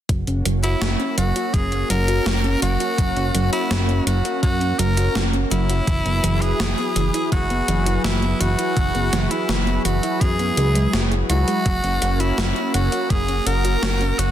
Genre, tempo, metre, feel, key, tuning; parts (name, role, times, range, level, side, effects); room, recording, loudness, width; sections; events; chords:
synthwave; 83 BPM; 4/4; straight; F# mixolydian; A4 = 437 Hz
lush unison pad; sustained chords; 0.1-14.3 s; F#3 to B4; -26 LUFS; equal; chorus, sidechain pumping
soft round pluck; arpeggios; 0.1-14.3 s; E3 to F#5; -27 LUFS; right 2 dB; chorus, tape echo
fat analog bass; bass; 0.1-14.3 s; F#1 to F#2; -22 LUFS; equal; sidechain pumping
electronic kick drum; drums; 0.1-13.2 s; -22 LUFS; equal; overdrive
gated 80s digital drum machine; drums; 0.1-14.3 s; hi-hat, snare drum; -26 LUFS; equal; gated reverb, gated reverb snare, overdrive
raspy tenor saxophone; melody; 0.6-14.3 s; E4 to A#4; -24 LUFS; equal; tape echo
light reverb, digital ambience; dense, heavily limited modern master; -18 LUFS; side -11 dB against mid
0.1-14.3 A section
0.1 F#; 5.9 E/F#; 11.7 F#